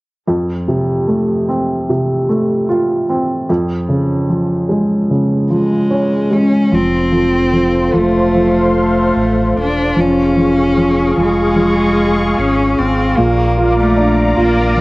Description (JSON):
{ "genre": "pop ballad", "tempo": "75 BPM", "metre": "4/4", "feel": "straight", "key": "F major", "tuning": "A4 = 440 Hz", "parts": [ { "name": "warm upright piano", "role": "accompaniment", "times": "0.3-14.8 s", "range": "F2 to F4", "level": "-14 LUFS", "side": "right 1 dB", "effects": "none" }, { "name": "rich cello", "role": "melody", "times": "5.5-14.8 s", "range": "Ab3 to D4", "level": "-16 LUFS", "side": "left 1 dB", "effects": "none" }, { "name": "sweeping resonant pad", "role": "sustained chords", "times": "6.7-14.8 s", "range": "Ab4 to D6", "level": "-18 LUFS", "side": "left 1 dB", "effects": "chorus" }, { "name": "sub bass with octave", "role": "bass", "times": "6.7-14.8 s", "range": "E1 to Bb1", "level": "-19 LUFS", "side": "equal", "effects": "none" } ], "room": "moderate spring reverb, RT60 1.6 s, studio reverb", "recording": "home recording on cassette", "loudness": "-12 LUFS", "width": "side -21 dB against mid", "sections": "0.3-6.7 A section; 6.7-14.8 B section", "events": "none", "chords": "0.3 F; 3.5 Db/F; 6.7 F; 10.0 Db/F; 13.2 Bb", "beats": "| 0.27 1.08 1.89 2.69 | 3.49 4.29 5.09 5.91 | 6.72 7.54 8.35 9.16 | 9.96 10.77 11.57 12.37 | 13.17 13.97 14.77" }